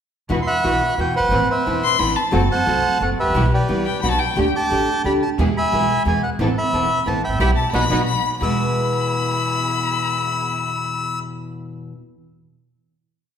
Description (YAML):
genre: tango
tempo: 178 BPM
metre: 3/4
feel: rubato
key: unclear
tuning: A4 = 435 Hz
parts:
  - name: nylon-string guitar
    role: accompaniment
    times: 0.3-11.9 s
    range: E2 to G4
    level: -23 LUFS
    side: equal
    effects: none
  - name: muted studio string section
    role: stabs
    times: 0.3-11.2 s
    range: A3 to B4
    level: -30 LUFS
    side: right 2 dB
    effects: none
  - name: upright bass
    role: bass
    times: 0.3-8.6 s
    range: E1 to E2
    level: -23 LUFS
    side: right 1 dB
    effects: none
  - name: bandoneon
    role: melody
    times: 0.4-11.2 s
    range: G4 to E6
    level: -21 LUFS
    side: right 1 dB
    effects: none
  - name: warm violin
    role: second line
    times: 1.8-4.5, 7.6-11.2 s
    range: G5 to C6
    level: -23 LUFS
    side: left 5 dB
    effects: none
room: wet scoring stage reverb, RT60 1.5 s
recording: recorded in a church or concert hall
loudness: -17 LUFS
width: side -8 dB against mid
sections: 0.3-8.4 variation; 8.4-10.4 final chord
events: band accent 7.4-8.4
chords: 0.3 Esus2; 1.3 Amadd9; 2.3 F#dim; 3.3 Em/B; 4.0 B; 4.4 Dsus4; 5.4 E; 6.4 Amadd9; 7.4 Em/B; 7.7 B; 8.4 E